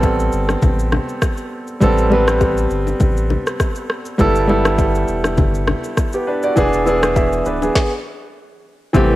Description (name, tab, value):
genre	afrobeats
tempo	101 BPM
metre	4/4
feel	swing 55% on 16ths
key	A minor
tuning	A4 = 439 Hz
part	clear concert grand piano	accompaniment	0.0-9.2 s	E3 to E5	-17 LUFS	right 1 dB	cassette tape
part	warm sub bass	bass	0.0-9.2 s	D1 to A1	-20 LUFS	equal	none
part	afro-pop drum kit	drums	0.0-9.1 s	kick drum, rim click, shaker, snare drum	-19 LUFS	equal	cassette tape
part	bongos and congas	percussion	0.0-9.1 s	none	-25 LUFS	left 4 dB	none
part	warm analog pad	sustained chords	8.9-9.2 s	C3 to B4	-20 LUFS	equal	chorus, cassette tape
room	light reverb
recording	home recording on cassette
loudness	-14 LUFS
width	side -16 dB against mid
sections	0.0-8.9 A section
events	stop 7.8-8.9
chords	0.0 Am9; 4.2 G69; 6.6 E7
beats	0.03 0.63 1.22 | 1.82 2.41 3.00 3.60 | 4.19 4.79 5.38 5.97 | 6.57 7.16 7.76 8.35 | 8.95